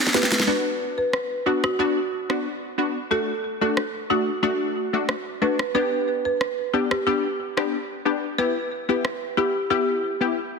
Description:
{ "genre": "dancehall", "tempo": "91 BPM", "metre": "4/4", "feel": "straight", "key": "B minor", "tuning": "A4 = 442 Hz", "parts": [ { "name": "folk marimba with medium mallets", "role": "melody", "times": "0.1-10.2 s", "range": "F#4 to B4", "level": "-25 LUFS", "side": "right 2 dB", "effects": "tape echo" }, { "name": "punchy chord stab", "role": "accompaniment", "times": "0.1-10.4 s", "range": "A3 to G4", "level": "-25 LUFS", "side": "left 4 dB", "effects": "chorus" }, { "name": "afro-pop drum kit", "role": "drums", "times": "0.1-9.2 s", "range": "hi-hat, rim click, shaker, snare drum", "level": "-26 LUFS", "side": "right 1 dB", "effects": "none" } ], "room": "moderate lush hall reverb, RT60 2.0 s", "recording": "dense, heavily limited modern master", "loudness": "-21 LUFS", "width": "side -4 dB against mid", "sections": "0.5-10.6 A section", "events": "drum fill 0.0-0.5", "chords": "0.5 Bm; 3.1 D; 5.7 G; 8.4 Em" }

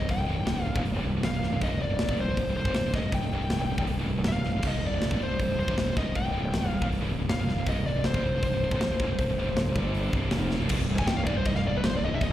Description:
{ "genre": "heavy metal", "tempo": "158 BPM", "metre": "4/4", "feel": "straight", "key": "C minor", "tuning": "A4 = 440 Hz", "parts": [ { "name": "smooth overdriven lead guitar", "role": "melody", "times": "0.0-12.3 s", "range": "B4 to Ab5", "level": "-32 LUFS", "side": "left 2 dB", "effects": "slapback echo, digital delay" }, { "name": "scooped high-gain guitar", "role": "riff", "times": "0.0-12.3 s", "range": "C2 to G3", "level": "-30 LUFS", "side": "equal", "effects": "distortion" }, { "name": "fuzz fingered electric bass", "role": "bass", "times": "0.0-12.3 s", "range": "C1 to Ab1", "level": "-29 LUFS", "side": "equal", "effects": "overdrive" }, { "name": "tight metal drum kit", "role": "drums", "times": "0.1-12.3 s", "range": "crash cymbal, hi-hat, kick drum, snare drum", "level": "-32 LUFS", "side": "equal", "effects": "none" } ], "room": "light reverb", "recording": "live gig heard through the venue's PA, recital hall reverb", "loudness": "-25 LUFS", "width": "side -13 dB against mid", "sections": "0.0-10.7 A section; 10.7-12.3 B section", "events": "drum fill 10.5; lead electric guitar solo 10.7-12.3", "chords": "0.0 C5; 9.8 G5; 10.1 C5" }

